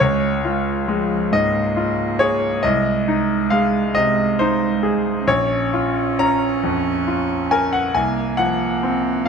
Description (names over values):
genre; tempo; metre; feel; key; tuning
neoclassical piano and strings; 46 BPM (dotted quarters); 6/8; rubato; Bb minor; A4 = 438 Hz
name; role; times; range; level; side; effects
warm cello; second line; 0.0-9.3 s; F3 to Db4; -22 LUFS; right 12 dB; none
bright grand piano; accompaniment; 0.0-9.3 s; Bb1 to Bb5; -18 LUFS; left 3 dB; none
room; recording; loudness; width
light reverb; close, detailed microphones; -17 LUFS; side -6 dB against mid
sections
0.0-9.3 A section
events
none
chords
0.0 Db; 2.6 Ab/C; 5.3 Bbm; 7.9 Fsus4/C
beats
| 0.01 1.32 | 2.64 3.95 | 5.28 6.62 | 7.94 9.26